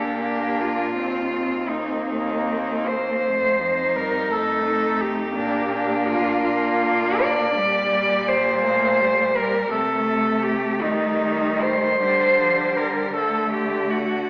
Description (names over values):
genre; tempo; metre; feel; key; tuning
classical, lyrical piece for cello ensemble; 49-58 BPM (dotted quarters); 6/8; rubato; Bb major, G minor from 7.6 s; A4 = 441 Hz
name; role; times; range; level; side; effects
clear cello; melody; 0.0-14.3 s; Eb4 to D5; -24 LUFS; equal; none
clear cello; second line; 0.0-14.3 s; G3 to Eb4; -30 LUFS; equal; none
rich cello; accompaniment; 0.0-14.3 s; F3 to C4; -30 LUFS; equal; none
rich cello; bass; 0.0-14.3 s; Eb2 to Eb3; -31 LUFS; equal; none
room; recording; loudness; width
wet scoring stage reverb, RT60 1.7 s; heard from further back in the room, vinyl crackle, AM radio sound; -22 LUFS; mono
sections
0.0-14.3 A section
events
none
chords
0.0 Bb; 1.0 Cm/Eb; 3.3 F7; 5.4 Bb; 7.6 Gm/Bb; 9.7 Cm; 12.0 G5/D; 13.1 D5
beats
| 0.96 2.07 | 3.25 4.30 | 5.36 6.44 | 7.58 8.63 | 9.71 10.82 | 12.01 13.13